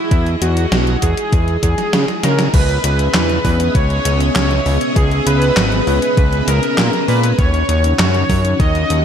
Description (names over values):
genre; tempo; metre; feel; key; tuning
synthwave; 99 BPM; 4/4; straight; C# dorian; A4 = 442 Hz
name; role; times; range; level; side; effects
soft supersaw; melody; 0.0-9.0 s; E4 to D#5; -19 LUFS; right 1 dB; cassette tape, ping-pong delay
string machine, full ensemble; sustained chords; 0.0-9.0 s; B3 to E5; -22 LUFS; left 1 dB; ensemble chorus, sidechain pumping
fat analog bass; bass; 0.1-9.0 s; G#1 to C#3; -16 LUFS; equal; none
electronic kick drum; drums; 0.1-8.7 s; none; -16 LUFS; equal; overdrive
gated 80s digital drum machine; drums; 0.1-9.0 s; crash cymbal, handclaps, hi-hat, snare drum; -19 LUFS; equal; gated reverb, gated reverb snare, overdrive
room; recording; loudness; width
light reverb; none; -12 LUFS; side -8 dB against mid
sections
0.0-2.5 A section; 2.5-9.0 B section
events
drum fill 2.1-2.5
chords
0.0 Emaj7; 2.5 C#m7; 7.4 D#m7